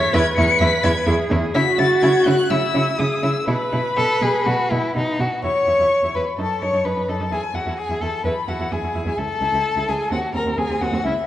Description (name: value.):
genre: quick classical-period movement for string quartet.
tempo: 128 BPM.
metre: 4/4.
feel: straight.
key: E major.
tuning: A4 = 440 Hz.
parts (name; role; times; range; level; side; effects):
clear violin; melody; 0.0-11.3 s; E5 to C#7; -24 LUFS; left 5 dB; none.
rich viola; accompaniment; 0.0-11.1 s; B#3 to C#5; -24 LUFS; right 1 dB; none.
rich violin; second line; 0.1-11.1 s; D#4 to C#5; -23 LUFS; left 1 dB; none.
clear cello; bass; 0.1-11.1 s; C#2 to C#3; -23 LUFS; right 2 dB; none.
room: wet concert hall reverb, RT60 2.2 s.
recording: worn, warbling old tape, cassette tape, warbly pitch drift.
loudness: -17 LUFS.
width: side -12 dB against mid.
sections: 0.0-5.4 A section; 5.4-11.3 B section.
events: none.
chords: 0.0 E; 1.6 C#m; 3.5 E/B (rootless); 5.4 C#m7/E; 6.4 F#m6; 7.3 E; 9.2 C#m; 10.1 D#m6.